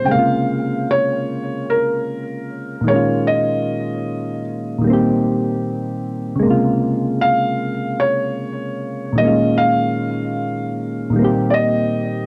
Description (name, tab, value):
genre	hip hop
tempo	76 BPM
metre	4/4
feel	swing 61% on 16ths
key	Bb dorian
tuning	A4 = 439 Hz
part	felt-muted upright piano	melody	0.0-12.3 s	Bb4 to G5	-22 LUFS	equal	low-pass filter, analog delay
part	soft electric-piano-like synth keys	accompaniment	0.0-12.3 s	Bb2 to G4	-21 LUFS	equal	chorus, low-pass filter
room	light reverb, studio reverb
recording	none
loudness	-19 LUFS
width	mono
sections	0.0-12.3 A section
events	none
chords	0.1 Bbm7; 2.9 Eb9sus4/Bb; 4.8 Cm7/Bb; 6.4 Bbm7; 9.2 Eb9sus4/Bb; 11.2 Cm7/Bb